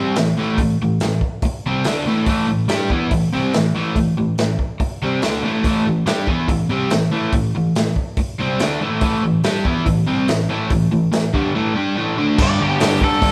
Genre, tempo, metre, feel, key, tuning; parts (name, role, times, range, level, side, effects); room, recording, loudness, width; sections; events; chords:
garage rock duo or trio; 142 BPM; 4/4; straight; A minor; A4 = 440 Hz
crunchy overdriven guitar; riff; 0.0-13.3 s; G2 to G4; -20 LUFS; equal
crunchy breakbeat drum kit; drums; 0.2-13.3 s; crash cymbal, hi-hat, kick drum, snare drum; -24 LUFS; equal
octave-fuzz lead guitar; melody; 12.4-13.3 s; G4 to D5; -22 LUFS; equal; distortion
moderate stone room reverb, RT60 1.2 s; band playing live in one room; -19 LUFS; mono
0.0-12.4 A section
0.0 Am; 12.4 G5